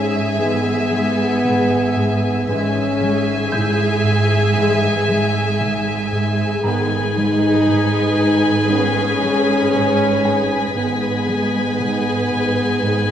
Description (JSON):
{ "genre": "cinematic, suspense film score", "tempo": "58 BPM", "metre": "4/4", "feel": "straight", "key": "G# harmonic minor", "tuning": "A4 = 439 Hz", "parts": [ { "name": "warm chamber violin section", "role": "melody", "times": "0.0-13.1 s", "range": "G#5", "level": "-24 LUFS", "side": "left 3 dB", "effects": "none" }, { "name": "warm chamber violin section", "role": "second line", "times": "0.0-13.1 s", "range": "B4 to E5", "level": "-27 LUFS", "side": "equal", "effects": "none" }, { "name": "warm chamber viola section", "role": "accompaniment", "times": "0.0-13.1 s", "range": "G#4", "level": "-24 LUFS", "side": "left 1 dB", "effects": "none" }, { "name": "flickering grainy texture", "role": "sustained chords", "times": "0.0-13.1 s", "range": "G#4 to G#5", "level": "-29 LUFS", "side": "equal", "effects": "none" }, { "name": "mellow French horn section", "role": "sustained chords", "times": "0.0-13.1 s", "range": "B3 to G#4", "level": "-20 LUFS", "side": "left 1 dB", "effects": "none" }, { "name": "smooth gliding synth bass", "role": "riff", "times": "0.0-13.1 s", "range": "G#2 to G#3", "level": "-26 LUFS", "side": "left 2 dB", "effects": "none" }, { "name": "dark chamber cello section", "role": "bass", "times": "0.0-13.1 s", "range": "G#2", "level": "-25 LUFS", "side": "right 4 dB", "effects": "none" }, { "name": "dark chamber double bass section", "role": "bass", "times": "0.0-13.1 s", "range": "G#1", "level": "-24 LUFS", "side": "right 4 dB", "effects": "none" }, { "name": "dark trombone section", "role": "sustained chords", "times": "0.4-13.1 s", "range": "D#3 to B3", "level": "-29 LUFS", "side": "right 3 dB", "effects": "none" }, { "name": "felt-muted upright piano", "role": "texture", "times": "3.5-13.1 s", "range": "G#4 to G6", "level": "-31 LUFS", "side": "left 1 dB", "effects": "none" }, { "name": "warm chamber violin section", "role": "texture", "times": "6.6-13.1 s", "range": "G#6 to B6", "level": "-32 LUFS", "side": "left 4 dB", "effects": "none" } ], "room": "wet scoring stage reverb, RT60 1.7 s", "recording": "small room ambience", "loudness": "-15 LUFS", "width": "side -9 dB against mid", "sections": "0.0-13.1 A section", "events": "none", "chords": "0.0 C#m/G#; 6.6 G#m" }